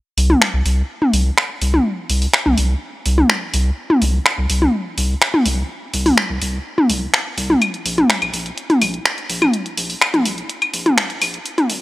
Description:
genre	melodic techno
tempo	125 BPM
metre	4/4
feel	straight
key	unclear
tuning	A4 = 440 Hz
part	gritty driven synth bass	bass	0.2-11.8 s	Ab1 to C2	-19 LUFS	equal	none
part	deep house drum kit	drums	0.2-11.8 s	claves, finger snaps, hi-hat, toms	-16 LUFS	equal	overdrive
room	light reverb, digital ambience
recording	dry, gritty hardware recording, high-pass filter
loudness	-15 LUFS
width	side -18 dB against mid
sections	0.0-11.8 A section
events	build-up 0.0-11.8; filter sweep 0.0-11.8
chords	none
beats	0.42 0.90 1.38 | 1.86 2.34 2.82 3.30 | 3.78 4.26 4.74 5.22 | 5.70 6.18 6.66 7.14 | 7.62 8.10 8.58 9.06 | 9.54 10.02 10.50 10.98 | 11.46

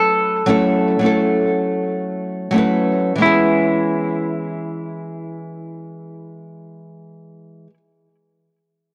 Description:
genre	chillout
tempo	free time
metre	none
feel	none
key	C# minor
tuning	A4 = 440 Hz
part	semi-hollow electric guitar	melody	0.0-7.7 s	E4 to A4	-21 LUFS	equal	analog delay
part	nylon-string guitar	accompaniment	0.0-7.8 s	E3 to B4	-21 LUFS	equal	analog delay
room	moderate lush hall reverb, RT60 2.4 s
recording	dry, gritty hardware recording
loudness	-18 LUFS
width	mono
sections	0.0-3.2 A section; 3.2-7.6 B section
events	none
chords	0.0 F#m7; 3.2 C#m7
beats	free time

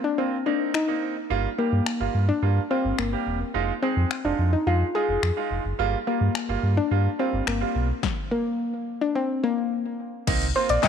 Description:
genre	dance-pop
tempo	107 BPM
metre	4/4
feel	straight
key	unclear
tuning	A4 = 442 Hz
part	soft round pluck	melody	0.0-10.9 s	Bb3 to Eb5	-26 LUFS	left 3 dB	chorus, tape echo
part	clear concert grand piano	accompaniment	0.2-10.9 s	G3 to Ab4	-29 LUFS	right 12 dB	sidechain pumping
part	punchy analog drum machine	drums	0.7-10.9 s	crash cymbal, finger snaps, handclaps, hi-hat, kick drum, snare drum	-29 LUFS	left 5 dB	overdrive
part	sub bass with octave	bass	1.3-10.9 s	E1 to G2	-24 LUFS	equal	sidechain pumping
room	light reverb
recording	1960s-style stereo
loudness	-22 LUFS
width	side -8 dB against mid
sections	0.0-10.3 A section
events	stop 8.0-10.3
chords	0.0 Cm7; 1.3 Gm7; 3.5 Fm7; 5.8 Gm7; 8.0 N.C.; 10.3 Cm7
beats	0.18 0.74 | 1.30 1.86 2.42 2.98 | 3.55 4.11 4.67 5.23 | 5.79 6.35 6.91 7.47 | 8.03 8.59 9.15 9.71 | 10.28 10.84

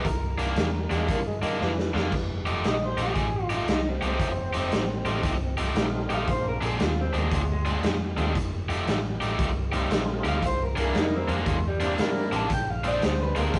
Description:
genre	electric blues shuffle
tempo	116 BPM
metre	4/4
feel	swing 66% on 8ths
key	F mixolydian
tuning	A4 = 440 Hz
part	electric guitar through a small old amp	melody	0.0-13.6 s	G3 to A5	-33 LUFS	equal	none
part	cranked stack guitar	riff	0.0-13.6 s	Bb2 to G4	-32 LUFS	equal	overdrive
part	vintage muted fingered electric bass	bass	0.0-13.6 s	F1 to G2	-32 LUFS	equal	none
part	raw garage drum kit	drums	0.0-13.6 s	crash cymbal, hi-hat, kick drum, snare drum	-31 LUFS	equal	none
part	growling tenor saxophone	second line	0.9-1.9 s	Eb3 to Bb3	-36 LUFS	equal	digital delay
part	tonewheel organ	accompaniment	5.0-13.6 s	G3 to F4	-36 LUFS	equal	slow rotary speaker, overdrive, chorus vibrato
part	warm horn section	stabs	10.8-13.4 s	Bb3 to C5	-35 LUFS	equal	none
room	moderate stone room reverb, RT60 1.1 s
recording	rough rehearsal-room recording, nothing above 10.6 kHz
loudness	-26 LUFS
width	mono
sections	0.0-2.1 A section; 2.1-13.6 B section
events	drum fill 1.6-2.1; clean electric guitar solo 2.1-13.6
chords	0.0 C9; 2.1 F9; 6.3 Bb9; 8.3 F9; 10.4 C9; 12.5 Bb9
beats	| 0.05 0.56 1.08 1.60 | 2.12 2.64 3.16 3.68 | 4.20 4.71 5.23 5.75 | 6.27 6.79 7.31 7.83 | 8.35 8.87 9.39 9.90 | 10.42 10.94 11.46 11.98 | 12.50 13.02 13.54

